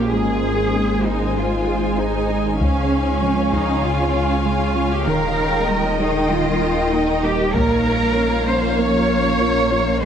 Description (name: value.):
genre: cinematic, hybrid orchestral and electronic film score.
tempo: 97 BPM.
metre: 4/4.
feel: straight.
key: Bb dorian.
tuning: A4 = 440 Hz.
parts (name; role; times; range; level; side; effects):
warm symphonic violin section; second line; 0.0-10.1 s; C5 to Ab5; -26 LUFS; left 2 dB; none.
warm symphonic viola section; accompaniment; 0.0-10.1 s; Eb3 to Db4; -23 LUFS; right 1 dB; none.
ethereal airy pad; sustained chords; 0.0-10.1 s; F3 to Eb5; -24 LUFS; equal; ensemble chorus, built-in reverb.
phased detuned saw bass; bass; 0.0-10.1 s; Eb1 to Db2; -24 LUFS; left 1 dB; phaser.
warm symphonic cello section; bass; 0.0-10.1 s; Db4 to Db5; -22 LUFS; right 1 dB; none.
soft round pluck; arpeggios; 0.1-10.1 s; Db3 to Bb4; -28 LUFS; right 2 dB; chorus, ping-pong delay.
taiko ensemble; drums; 2.6-3.8, 7.5-8.7 s; none; -24 LUFS; left 1 dB; none.
room: wet scoring stage reverb, RT60 1.7 s.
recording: none.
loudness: -16 LUFS.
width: side -8 dB against mid.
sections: 0.0-10.1 A section.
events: none.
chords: 0.1 Ab; 2.6 Db; 5.1 Eb; 7.5 Bbm.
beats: | 0.12 0.74 1.36 1.98 | 2.60 3.22 3.84 4.45 | 5.07 5.69 6.31 6.93 | 7.55 8.16 8.78 9.40 | 10.02.